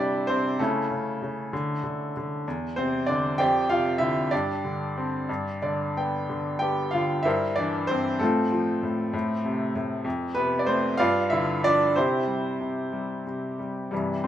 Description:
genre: classical, lyrical solo piano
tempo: 60-66 BPM (dotted quarters)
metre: 6/8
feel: rubato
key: C major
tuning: A4 = 439 Hz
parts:
  - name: bright upright piano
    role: solo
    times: 0.0-14.3 s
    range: E2 to G5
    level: -24 LUFS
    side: equal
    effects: none
room: moderate recital hall reverb, RT60 1.4 s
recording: minimal, uncompressed stereo recording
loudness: -24 LUFS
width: side -11 dB against mid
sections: 0.0-13.9 A section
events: upright piano fill 5.3-6.3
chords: 0.0 C; 0.6 A/C#; 1.5 Dsus2; 2.5 Cadd9/E; 3.4 F5; 4.3 Gsus4; 5.3 G; 7.3 C7/G; 8.2 F/A; 10.0 F; 11.0 G7; 12.0 C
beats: | 0.59 1.52 | 2.46 3.38 | 4.32 5.29 | 6.28 7.25 | 8.20 9.14 | 10.05 10.99 | 11.96 12.93 | 13.92

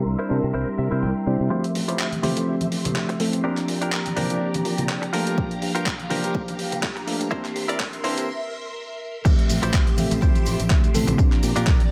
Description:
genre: filtered disco house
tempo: 124 BPM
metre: 4/4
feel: swing 55% on 16ths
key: D minor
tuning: A4 = 440 Hz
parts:
  - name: mellow tine electric piano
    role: accompaniment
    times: 0.0-11.9 s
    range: E3 to E5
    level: -28 LUFS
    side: equal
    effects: phaser, sidechain pumping, low-pass filter
  - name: phased string machine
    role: sustained chords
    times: 0.0-11.9 s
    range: G4 to C6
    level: -36 LUFS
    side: equal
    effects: ensemble chorus, phaser, sidechain pumping, low-pass filter
  - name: fingered electric bass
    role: bass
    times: 0.0-11.8 s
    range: A1 to C3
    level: -31 LUFS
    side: equal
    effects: sidechain pumping, high-pass filter, low-pass filter
  - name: direct-recorded clean electric guitar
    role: riff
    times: 0.2-11.8 s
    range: D4 to G5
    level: -32 LUFS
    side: equal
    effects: sidechain pumping, low-pass filter
  - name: tambourine and congas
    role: percussion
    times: 1.5-11.9 s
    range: none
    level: -34 LUFS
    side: equal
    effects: sidechain pumping on perc, low-pass filter on perc
  - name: dusty soul sampler-style drum kit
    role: drums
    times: 1.6-11.9 s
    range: crash cymbal, handclaps, hi-hat, shaker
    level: -32 LUFS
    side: equal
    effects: overdrive, sidechain pumping on hats, sidechain pumping on cymbals, sidechain pumping on perc
  - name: electronic kick drum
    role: drums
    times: 5.4-11.8 s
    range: none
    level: -22 LUFS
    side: equal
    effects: none
room: light reverb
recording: high-pass filter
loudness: -23 LUFS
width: mono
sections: 0.0-1.5 A section; 1.5-9.3 B section; 9.3-11.9 C section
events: clean electric guitar fill 0.5-1.5; build-up 1.5-9.3; filter sweep 1.5-9.3; break 8.3-9.3; drop 9.3-11.9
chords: 0.0 C7; 1.5 Dm11; 3.4 Bb6; 5.1 Gm7; 7.3 C7; 9.3 Dm11; 11.2 Bb6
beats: 0.06 0.54 1.03 | 1.51 1.99 2.48 2.96 | 3.45 3.93 4.41 4.90 | 5.38 5.87 6.35 6.83 | 7.32 7.80 8.29 8.77 | 9.25 9.74 10.22 10.70 | 11.19 11.67

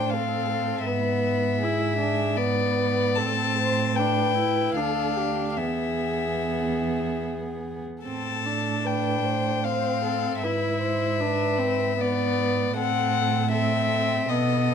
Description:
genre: classical, slow romantic movement for string quartet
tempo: 71-81 BPM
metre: 3/4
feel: rubato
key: unclear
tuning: A4 = 440 Hz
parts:
  - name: warm violin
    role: melody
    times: 0.0-14.7 s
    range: D5 to A5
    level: -27 LUFS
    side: left 8 dB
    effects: none
  - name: dark violin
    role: second line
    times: 0.0-14.7 s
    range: G4 to C5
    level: -29 LUFS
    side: left 2 dB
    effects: none
  - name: rich viola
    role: accompaniment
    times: 0.0-14.7 s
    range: B3 to E4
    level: -29 LUFS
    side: right 3 dB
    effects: none
  - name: dark cello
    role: bass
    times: 0.0-14.7 s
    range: D2 to B2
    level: -29 LUFS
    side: right 6 dB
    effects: none
room: light reverb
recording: close, detailed microphones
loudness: -22 LUFS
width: side -7 dB against mid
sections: 0.0-14.7 A section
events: none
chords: 0.0 Am; 0.9 E7/G#; 3.2 Am; 4.8 Dm; 5.6 E; 8.1 Am; 10.4 E7/G#; 12.8 F#m7b5/A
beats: 0.12 | 0.87 1.63 2.37 | 3.19 3.98 4.77 | 5.58 6.42 7.24 | 8.06 8.86 9.65 | 10.43 11.20 11.99 | 12.77 13.53 14.30

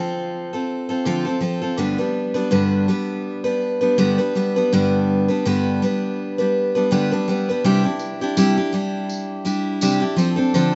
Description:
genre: acoustic pop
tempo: 82 BPM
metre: 4/4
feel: swing 55% on 16ths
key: C major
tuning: A4 = 438 Hz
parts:
  - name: picked steel-string acoustic guitar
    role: accompaniment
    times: 0.0-10.7 s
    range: G2 to B4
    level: -20 LUFS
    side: equal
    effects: none
  - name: tambourine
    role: percussion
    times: 8.0-10.7 s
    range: none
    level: -34 LUFS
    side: equal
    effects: none
room: light reverb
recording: rough home demo mix, nothing above 7.8 kHz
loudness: -20 LUFS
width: mono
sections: 0.0-7.6 A section; 7.6-10.8 B section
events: none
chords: 0.0 Dm7 (rootless); 1.8 G; 7.6 Cadd9; 10.2 Dm7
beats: 0.32 1.06 | 1.79 2.52 3.25 3.98 | 4.71 5.45 6.18 6.91 | 7.64 8.37 9.09 9.82 | 10.55

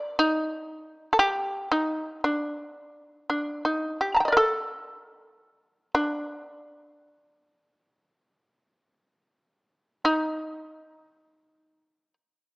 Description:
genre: japanese traditional, Japanese chamber music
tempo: 57 BPM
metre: 2/4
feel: rubato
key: D miyako bushi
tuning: A4 = 442 Hz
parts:
  - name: shamisen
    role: solo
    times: 0.0-12.1 s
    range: D4 to Bb5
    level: -24 LUFS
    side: equal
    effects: none
room: moderate concert hall reverb, RT60 1.9 s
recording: small speaker sound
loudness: -24 LUFS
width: side -34 dB against mid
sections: 0.0-4.3 A section; 4.3-12.6 B section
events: none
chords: none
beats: | 0.19 1.21 | 2.24 3.29 | 4.35 5.41 | 6.46 7.47 | 8.49 9.53 | 10.57 11.63

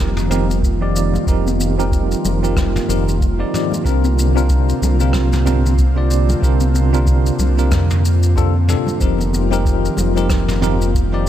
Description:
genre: sunset chillout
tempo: 93 BPM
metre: 4/4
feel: swing 58% on 16ths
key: unclear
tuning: A4 = 442 Hz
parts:
  - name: bell-like tine electric piano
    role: accompaniment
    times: 0.0-11.3 s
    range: C3 to D5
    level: -20 LUFS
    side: moving between left 7 dB and right 6 dB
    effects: medium stereo tremolo, auto-pan, low-pass filter, digital delay
  - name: airy breathy pad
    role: sustained chords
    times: 0.0-11.3 s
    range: D3 to F4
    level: -23 LUFS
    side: right 1 dB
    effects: chorus
  - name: round analog bass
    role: bass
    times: 0.0-11.3 s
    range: F1 to F2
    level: -17 LUFS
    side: equal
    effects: none
  - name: vintage brush drum kit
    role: drums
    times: 0.2-11.1 s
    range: rim click, shaker, toms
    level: -27 LUFS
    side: left 1 dB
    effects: none
  - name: congas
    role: percussion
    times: 0.3-10.8 s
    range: none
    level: -27 LUFS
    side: left 3 dB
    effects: none
  - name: electronic kick drum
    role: drums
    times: 0.6-11.1 s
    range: none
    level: -18 LUFS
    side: equal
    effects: none
room: light reverb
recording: none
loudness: -14 LUFS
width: side -11 dB against mid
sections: 0.0-11.3 A section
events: filter sweep on tine electric piano 0.0-11.3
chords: 0.0 F9sus4; 3.9 C9sus4; 9.0 F9sus4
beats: 0.63 | 1.27 1.92 2.56 3.21 | 3.85 4.50 5.14 5.79 | 6.43 7.08 7.72 8.37 | 9.01 9.66 10.30 10.95

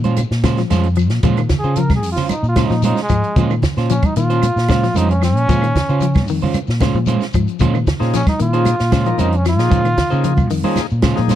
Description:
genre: afrobeat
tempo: 113 BPM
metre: 4/4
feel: straight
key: Bb minor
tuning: A4 = 441 Hz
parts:
  - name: clean electric guitar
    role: arpeggios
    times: 0.0-11.4 s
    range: Db3 to F3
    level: -23 LUFS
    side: left 9 dB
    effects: spring reverb
  - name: electric guitar at the edge of break-up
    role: stabs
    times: 0.0-11.4 s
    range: Ab3 to C5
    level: -23 LUFS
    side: right 8 dB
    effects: none
  - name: fingered electric bass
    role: bass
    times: 0.0-11.4 s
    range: F2 to Db3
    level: -17 LUFS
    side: equal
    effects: none
  - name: compact cocktail drum kit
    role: drums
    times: 0.0-11.4 s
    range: hi-hat, kick drum, snare drum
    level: -20 LUFS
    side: equal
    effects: none
  - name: congas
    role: percussion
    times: 0.0-11.4 s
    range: none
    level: -23 LUFS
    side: right 4 dB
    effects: none
  - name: shekere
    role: percussion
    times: 0.1-11.4 s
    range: none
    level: -29 LUFS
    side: left 8 dB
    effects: none
  - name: claves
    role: percussion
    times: 0.2-11.2 s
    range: none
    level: -35 LUFS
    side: right 21 dB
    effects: none
  - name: brilliant trombone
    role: melody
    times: 1.6-10.5 s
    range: Ab3 to Bb4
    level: -21 LUFS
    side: right 1 dB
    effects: none
  - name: bright tonewheel organ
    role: accompaniment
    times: 8.0-11.4 s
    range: Bb3 to Bb4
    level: -24 LUFS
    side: left 16 dB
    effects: none
room: little or no reverb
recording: dry, close 1970s-style studio recording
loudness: -14 LUFS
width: side -11 dB against mid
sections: 0.0-11.4 A section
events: trombone solo 0.0-11.4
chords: 0.0 Bbm9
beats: 0.17 0.70 | 1.23 1.77 2.30 2.83 | 3.36 3.89 4.42 4.95 | 5.48 6.01 6.54 7.07 | 7.60 8.13 8.66 9.19 | 9.71 10.24 10.77 11.30

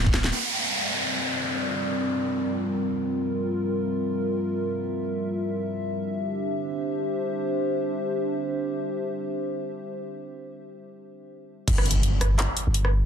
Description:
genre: half-time drum and bass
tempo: free time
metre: none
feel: none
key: G dorian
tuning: A4 = 440 Hz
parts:
  - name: long sustained 808-style bass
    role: bass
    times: 0.0-0.3, 11.7-13.1 s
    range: D1 to G1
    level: -22 LUFS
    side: equal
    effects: none
  - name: drum and bass drum kit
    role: drums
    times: 0.1-0.3, 11.7-12.9 s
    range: crash cymbal, handclaps, hi-hat, rim click, snare drum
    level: -27 LUFS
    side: equal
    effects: none
  - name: electronic kick drum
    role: drums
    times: 0.1-0.2, 11.7-11.8 s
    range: none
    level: -24 LUFS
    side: equal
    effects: none
  - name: dark analog pad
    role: sustained chords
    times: 0.3-11.7 s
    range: G3 to E5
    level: -27 LUFS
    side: equal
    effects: chorus, sidechain pumping
  - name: downlifter and impact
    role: sound effects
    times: 0.3-3.2, 11.7-13.1 s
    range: none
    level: -28 LUFS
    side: equal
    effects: none
room: moderate echo chamber reverb, RT60 1.3 s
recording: dense, heavily limited modern master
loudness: -24 LUFS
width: side -8 dB against mid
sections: 0.3-11.7 A section; 11.7-13.1 B section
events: drum fill 0.0-0.3; drop 11.7-13.1; impact 11.7-13.1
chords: 0.3 Gm; 6.0 Dsus2; 11.7 G5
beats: free time

